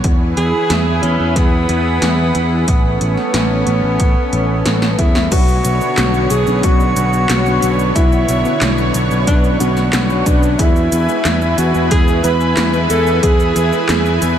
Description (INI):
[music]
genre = synthwave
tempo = 91 BPM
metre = 4/4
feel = straight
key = B dorian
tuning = A4 = 443 Hz
[part]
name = lush unison pad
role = sustained chords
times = 0.0-14.4 s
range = D3 to G#5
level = -20 LUFS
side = equal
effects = chorus, sidechain pumping
[part]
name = picked electric bass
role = bass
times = 0.0-14.4 s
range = A1 to E2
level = -17 LUFS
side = equal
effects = tube saturation
[part]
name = 80s electronic pad drums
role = drums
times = 0.0-14.4 s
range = crash cymbal, handclaps, hi-hat, shaker, snare drum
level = -22 LUFS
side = equal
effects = none
[part]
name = electronic kick drum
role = drums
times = 0.0-13.4 s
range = none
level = -14 LUFS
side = equal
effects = none
[part]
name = mellow tenor saxophone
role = melody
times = 0.4-14.3 s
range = B3 to B4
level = -20 LUFS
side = equal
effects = diffuse ambient delay
[part]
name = FM electric piano with soft pad layer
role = second line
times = 5.3-14.2 s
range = D4 to B4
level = -24 LUFS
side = left 1 dB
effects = none
[part]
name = mellow synth brass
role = stabs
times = 5.3-13.8 s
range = B2 to B4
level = -23 LUFS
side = left 1 dB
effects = chorus, diffuse ambient delay
[sound]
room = moderate huge ambient reverb, RT60 8.6 s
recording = dreamy mix soaked in reverb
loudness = -12 LUFS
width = side -9 dB against mid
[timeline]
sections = 0.0-5.3 A section; 5.3-14.4 B section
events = drum fill 4.8-5.3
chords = 0.0 E; 2.7 Aadd9; 5.3 Bmadd9; 10.6 E